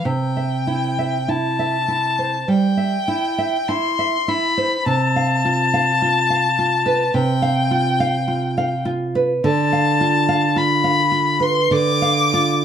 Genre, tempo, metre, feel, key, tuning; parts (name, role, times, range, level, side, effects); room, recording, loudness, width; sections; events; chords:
romantic duo for violin and classical guitar; 46-54 BPM; 4/4; rubato; C major; A4 = 441 Hz
clear violin; melody; 0.0-12.6 s; G5 to D6; -19 LUFS; left 4 dB
nylon-string guitar; accompaniment; 0.0-12.6 s; C3 to F5; -19 LUFS; right 3 dB
moderate small room reverb, RT60 0.5 s; dark, warm production; -16 LUFS; side -8 dB against mid
0.1-12.6 A section
0.1 C; 4.9 G9/C; 9.4 Bm7b5/D